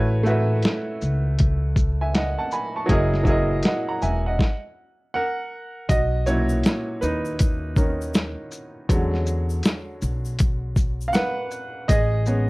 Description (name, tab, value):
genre	lo-fi hip hop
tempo	80 BPM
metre	4/4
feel	swing 63% on 16ths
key	B major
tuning	A4 = 438 Hz
part	bright upright piano	accompaniment	0.0-12.5 s	A#2 to C#6	-25 LUFS	right 1 dB	low-pass filter, plate reverb
part	upright bass	bass	0.0-12.5 s	E1 to E2	-24 LUFS	equal	none
part	lo-fi sampler-style drum kit	drums	0.3-12.5 s	hi-hat, kick drum, shaker, snare drum	-21 LUFS	equal	none
part	tube shaker	percussion	5.9-12.5 s	none	-45 LUFS	left 6 dB	none
room	light reverb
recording	cassette tape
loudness	-20 LUFS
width	side -23 dB against mid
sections	0.0-5.9 A section; 5.9-12.5 A section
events	stop 4.4-5.9; upright piano solo 5.9-12.5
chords	0.0 A69; 2.9 F#13; 5.9 Bmaj7; 8.9 E13; 11.9 Amaj9